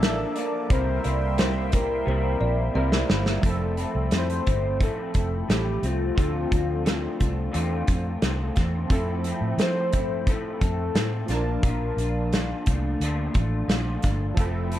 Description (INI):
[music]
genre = indie pop, bedroom pop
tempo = 88 BPM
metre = 4/4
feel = straight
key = F major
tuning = A4 = 441 Hz
[part]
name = soft octave-layered synth lead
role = melody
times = 0.0-12.6 s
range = F4 to E5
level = -30 LUFS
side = left 3 dB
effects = lush chorus, slapback echo
[part]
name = kalimba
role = second line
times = 0.0-3.3 s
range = Bb4 to E5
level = -33 LUFS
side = right 4 dB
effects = analog chorus, slapback echo
[part]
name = electric guitar through a small old amp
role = accompaniment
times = 0.0-14.8 s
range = Bb2 to A4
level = -32 LUFS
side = left 2 dB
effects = ensemble chorus, warbly pitch drift
[part]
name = warm analog keys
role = accompaniment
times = 0.0-14.8 s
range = F3 to A5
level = -33 LUFS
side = right 4 dB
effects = chorus, cassette tape
[part]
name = phased analog pad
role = sustained chords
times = 0.0-3.4 s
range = Bb3 to D6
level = -36 LUFS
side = left 1 dB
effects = phaser, chorus
[part]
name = vintage muted fingered electric bass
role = bass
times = 0.0-14.8 s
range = F1 to F3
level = -27 LUFS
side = equal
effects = none
[part]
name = loose indie drum kit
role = drums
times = 0.0-14.8 s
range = hi-hat, kick drum, snare drum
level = -25 LUFS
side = equal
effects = none
[sound]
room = light reverb, small room reverb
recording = dark, warm production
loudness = -22 LUFS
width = side -12 dB against mid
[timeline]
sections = 0.0-3.4 A section; 3.4-14.8 B section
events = drum fill 2.1-3.4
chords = 0.0 Bbmaj7; 0.7 C7; 3.4 Fmaj7; 6.2 Dm7; 8.9 Fmaj7; 11.3 Bbmaj7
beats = 0.02 | 0.71 1.39 2.07 2.75 | 3.44 4.12 4.80 5.49 | 6.17 6.86 7.54 8.22 | 8.90 9.59 10.27 10.96 | 11.64 12.32 13.01 13.69 | 14.37